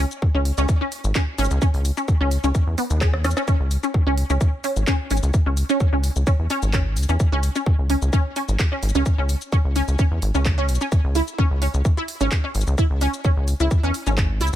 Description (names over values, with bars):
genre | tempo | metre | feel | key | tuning
minimal techno | 129 BPM | 4/4 | straight | C# minor | A4 = 440 Hz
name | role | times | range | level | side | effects
resonant blip pluck | riff | 0.0-14.5 s | B3 to G#4 | -25 LUFS | equal | ensemble chorus, sidechain pumping, tape echo
rubbery square bass | bass | 0.0-14.6 s | G#1 to E2 | -20 LUFS | equal | tube saturation, sidechain pumping
minimal click drum kit | drums | 0.1-14.6 s | handclaps, hi-hat, rim click, shaker | -30 LUFS | equal | none
electronic kick drum | drums | 0.2-14.3 s | none | -18 LUFS | equal | none
room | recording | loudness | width
little or no reverb | none | -18 LUFS | side -12 dB against mid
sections
0.0-14.6 A section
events
drum fill 3.0-3.5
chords
none